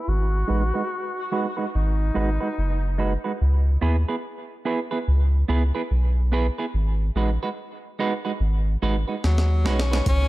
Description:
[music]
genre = dub reggae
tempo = 72 BPM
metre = 4/4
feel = swing 62% on 16ths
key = unclear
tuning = A4 = 441 Hz
[part]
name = bright tenor saxophone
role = melody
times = 0.0-3.0, 9.3-10.3 s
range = F#3 to F#4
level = -29 LUFS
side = left 2 dB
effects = low-pass filter, dub echo
[part]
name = soft dub sub bass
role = bass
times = 0.1-10.3 s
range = F#1 to D#2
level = -20 LUFS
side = equal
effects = none
[part]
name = semi-hollow electric guitar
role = accompaniment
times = 0.5-10.0 s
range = G#3 to B4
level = -28 LUFS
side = right 4 dB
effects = low-pass filter, dub echo
[part]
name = breakbeat sampler-style drum kit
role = drums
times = 9.2-10.3 s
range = hi-hat, kick drum, snare drum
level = -27 LUFS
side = equal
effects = none
[sound]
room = light reverb, digital ambience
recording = dark, warm production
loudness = -21 LUFS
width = side -17 dB against mid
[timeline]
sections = 0.0-10.1 A section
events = filter sweep 0.0-10.1; drum fill 9.2-10.1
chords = 0.1 G#m7; 3.4 C#m7; 6.7 G#m7

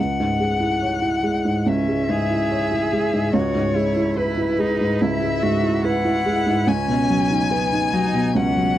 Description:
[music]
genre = neoclassical piano and strings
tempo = 72 BPM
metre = 4/4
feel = rubato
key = C# minor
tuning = A4 = 440 Hz
[part]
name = warm violin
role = melody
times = 0.0-8.8 s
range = B4 to G#5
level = -24 LUFS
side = left 5 dB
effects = none
[part]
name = felt-muted upright piano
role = accompaniment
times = 0.0-8.8 s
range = C#2 to C#5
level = -20 LUFS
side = right 1 dB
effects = none
[part]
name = clear cello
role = second line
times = 1.7-8.8 s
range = B3 to G#4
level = -26 LUFS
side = right 4 dB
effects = tape echo
[sound]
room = little or no reverb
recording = dry, close 1970s-style studio recording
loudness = -18 LUFS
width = side -12 dB against mid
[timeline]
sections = 0.0-8.8 A section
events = none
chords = 0.0 C#m; 3.3 E/C#; 6.7 B/C#

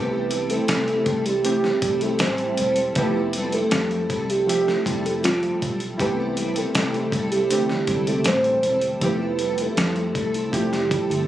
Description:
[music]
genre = indie pop, bedroom pop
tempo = 79 BPM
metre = 4/4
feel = straight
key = C major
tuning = A4 = 441 Hz
[part]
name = soft octave-layered synth lead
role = melody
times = 0.0-11.3 s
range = F4 to C5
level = -23 LUFS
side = right 1 dB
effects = wide subtle chorus, digital delay
[part]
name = picked steel-string acoustic guitar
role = accompaniment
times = 0.0-11.3 s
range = C3 to A4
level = -28 LUFS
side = left 2 dB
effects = ensemble chorus, vibrato effect
[part]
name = warm analog keys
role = accompaniment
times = 0.0-11.3 s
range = D3 to E5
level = -28 LUFS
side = right 2 dB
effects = chorus, cassette tape
[part]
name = vintage muted fingered electric bass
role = bass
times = 0.0-11.3 s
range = E1 to C3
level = -31 LUFS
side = equal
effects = none
[part]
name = dusty soul sampler-style drum kit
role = drums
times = 0.3-11.3 s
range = hi-hat, kick drum, snare drum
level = -27 LUFS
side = equal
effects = none
[sound]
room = moderate plate reverb, RT60 2.1 s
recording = recorded on a phone in the room, studio ambience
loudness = -20 LUFS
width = side -12 dB against mid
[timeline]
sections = 0.0-11.3 A section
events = none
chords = 0.0 C6; 3.0 Fmaj9; 6.0 C6; 9.0 Fmaj9

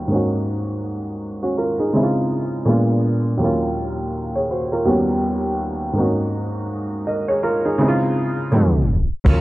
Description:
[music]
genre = lo-fi hip hop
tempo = 82 BPM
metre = 4/4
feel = swing 59% on 16ths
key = unclear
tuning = A4 = 436 Hz
[part]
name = warm upright piano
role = accompaniment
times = 0.0-9.4 s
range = Eb2 to Eb5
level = -18 LUFS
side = equal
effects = cassette tape
[part]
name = upright bass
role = bass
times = 9.3-9.4 s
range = Eb2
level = -19 LUFS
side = equal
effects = none
[part]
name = vintage brush drum kit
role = drums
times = 9.3-9.4 s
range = crash cymbal, kick drum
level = -14 LUFS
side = equal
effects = none
[sound]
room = moderate plate reverb, RT60 2.8 s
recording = vinyl crackle, low-pass filter, tape stop, nothing above 10.4 kHz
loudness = -18 LUFS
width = side -18 dB against mid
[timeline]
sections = 0.0-9.3 A section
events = filter sweep 0.0-9.3; tape stop 8.5-9.3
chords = 0.1 Ab7sus4; 1.9 Dbmaj7; 2.7 Bb7b9; 3.4 Ebm7; 4.9 Eb7alt; 6.0 Ab7sus4; 7.8 Dbmaj7; 8.5 Bb7b9

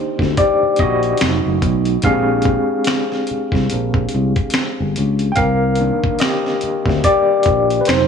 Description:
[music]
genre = R&B, neo-soul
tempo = 72 BPM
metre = 4/4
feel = swing 58% on 16ths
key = C minor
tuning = A4 = 443 Hz
[part]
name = overdriven tine electric piano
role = accompaniment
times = 0.0-8.1 s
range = Eb3 to G5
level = -16 LUFS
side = left 1 dB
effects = fast tremolo
[part]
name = fingered electric bass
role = bass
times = 0.2-8.1 s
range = F1 to D2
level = -19 LUFS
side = equal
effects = none
[part]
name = dusty soul sampler-style drum kit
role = drums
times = 0.2-8.1 s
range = finger snaps, hi-hat, kick drum, snare drum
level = -20 LUFS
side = equal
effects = none
[sound]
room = light reverb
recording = none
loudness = -14 LUFS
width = side -6 dB against mid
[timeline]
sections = 0.0-8.1 A section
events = tine electric piano solo 0.0-8.1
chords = 0.0 Cm9; 1.2 F7b9; 2.0 Bb13; 5.4 Cm9

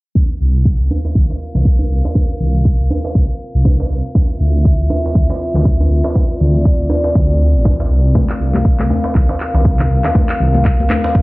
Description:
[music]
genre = afro house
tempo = 120 BPM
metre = 4/4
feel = swing 57% on 16ths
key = unclear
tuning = A4 = 440 Hz
[part]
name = dark analog pad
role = sustained chords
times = 0.2-11.2 s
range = C4 to F5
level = -22 LUFS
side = left 1 dB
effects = chorus, sidechain pumping
[part]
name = electronic kick drum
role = drums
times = 0.2-11.2 s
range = none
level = -14 LUFS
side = equal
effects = studio reverb
[part]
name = djembe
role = percussion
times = 0.2-11.1 s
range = none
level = -21 LUFS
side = right 1 dB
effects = none
[part]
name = dark detuned saw bass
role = bass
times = 0.4-11.2 s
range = A1 to D2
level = -14 LUFS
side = equal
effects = tube saturation, sidechain pumping
[part]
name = afro-pop drum kit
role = drums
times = 1.2-11.0 s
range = handclaps, toms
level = -25 LUFS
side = left 1 dB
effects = studio reverb
[part]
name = congas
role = percussion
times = 8.2-11.0 s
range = none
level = -21 LUFS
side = left 3 dB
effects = none
[sound]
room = digital ambience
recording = dry, gritty hardware recording, cassette tape, low-pass filter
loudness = -12 LUFS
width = side -22 dB against mid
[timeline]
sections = 0.2-11.2 A section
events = filter sweep on detuned saw bass 0.2-11.2; filter sweep 0.2-11.2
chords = 0.2 C7sus4; 4.2 Dm9; 8.2 C7sus4

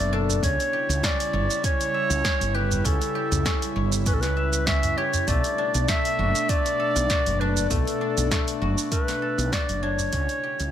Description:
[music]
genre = organic downtempo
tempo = 99 BPM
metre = 4/4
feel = swing 54% on 16ths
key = B minor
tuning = A4 = 440 Hz
[part]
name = dark clarinet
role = melody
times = 0.0-10.7 s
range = A4 to E5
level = -26 LUFS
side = equal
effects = ping-pong delay
[part]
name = airy breathy pad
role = sustained chords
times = 0.0-10.7 s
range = B2 to E4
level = -32 LUFS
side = right 1 dB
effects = chorus, sidechain pumping
[part]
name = guzheng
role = arpeggios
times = 0.0-10.7 s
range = A3 to E5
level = -31 LUFS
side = left 5 dB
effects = ping-pong delay
[part]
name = woody fretless electric bass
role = bass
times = 0.0-10.7 s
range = F#1 to C#2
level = -25 LUFS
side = equal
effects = ensemble chorus
[part]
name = deep house drum kit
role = drums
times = 0.0-10.7 s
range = hi-hat, shaker, snare drum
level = -29 LUFS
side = right 2 dB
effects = none
[part]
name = udu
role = percussion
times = 0.3-10.1 s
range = none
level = -32 LUFS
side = right 1 dB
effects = none
[part]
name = electronic kick drum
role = drums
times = 0.4-10.3 s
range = none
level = -27 LUFS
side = right 1 dB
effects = none
[sound]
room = light reverb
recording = none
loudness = -21 LUFS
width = side -10 dB against mid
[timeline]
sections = 0.0-10.7 A section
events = fade-out 8.5-10.7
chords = 0.4 C#dim; 5.3 Bm7; 10.1 C#dim

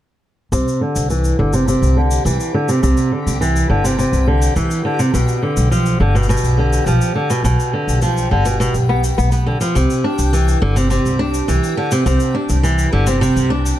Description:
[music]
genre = folktronica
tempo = 104 BPM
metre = 4/4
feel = straight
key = C major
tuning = A4 = 437 Hz
[part]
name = flamenco guitar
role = arpeggios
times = 0.5-13.8 s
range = B2 to D4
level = -17 LUFS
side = equal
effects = low-pass filter, tape echo
[part]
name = upright bass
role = bass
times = 0.5-13.7 s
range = G1 to C2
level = -17 LUFS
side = equal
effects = none
[part]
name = cabasa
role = drums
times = 0.5-13.8 s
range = none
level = -29 LUFS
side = left 3 dB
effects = none
[part]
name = backwards swelling texture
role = texture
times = 1.3-13.8 s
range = G4 to G5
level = -28 LUFS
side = right 1 dB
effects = built-in reverb
[sound]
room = small room ambience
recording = dark, warm production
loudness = -14 LUFS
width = side -12 dB against mid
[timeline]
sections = 0.5-13.8 A section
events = filter sweep on nylon-string guitar 0.5-13.8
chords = 0.5 Cadd9; 5.1 G7; 9.8 Cadd9

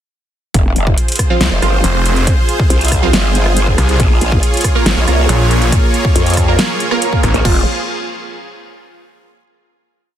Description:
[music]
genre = heavy wobble dubstep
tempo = 139 BPM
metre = 4/4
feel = half-time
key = F minor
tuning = A4 = 440 Hz
[part]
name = supersaw pad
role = sustained chords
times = 1.0-7.7 s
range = Bb3 to Db5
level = -19 LUFS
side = right 1 dB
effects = sidechain pumping
[part]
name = growl bass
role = bass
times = 0.5-7.7 s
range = F1 to F2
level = -14 LUFS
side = equal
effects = chorus, overdrive
[part]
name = dubstep drum kit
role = drums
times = 0.5-7.5 s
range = crash cymbal, hi-hat, rim click, snare drum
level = -19 LUFS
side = equal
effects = studio reverb
[part]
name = electronic kick drum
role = drums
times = 0.5-7.5 s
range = none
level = -14 LUFS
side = equal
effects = studio reverb
[part]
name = orchestra-hit-like synth stab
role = stabs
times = 1.3-7.6 s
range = F3 to Bb4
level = -21 LUFS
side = right 4 dB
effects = built-in reverb, phaser, tape echo
[part]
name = snarling distorted saw bass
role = bass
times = 1.8-7.3 s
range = F1 to C2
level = -13 LUFS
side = equal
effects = distortion, overdrive
[sound]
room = light reverb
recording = dense, heavily limited modern master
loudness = -11 LUFS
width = side -10 dB against mid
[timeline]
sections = 0.5-7.5 drop; 7.5-9.2 final chord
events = drop 0.5-7.5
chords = 0.5 Fm; 4.0 Bbm7; 7.5 Fm

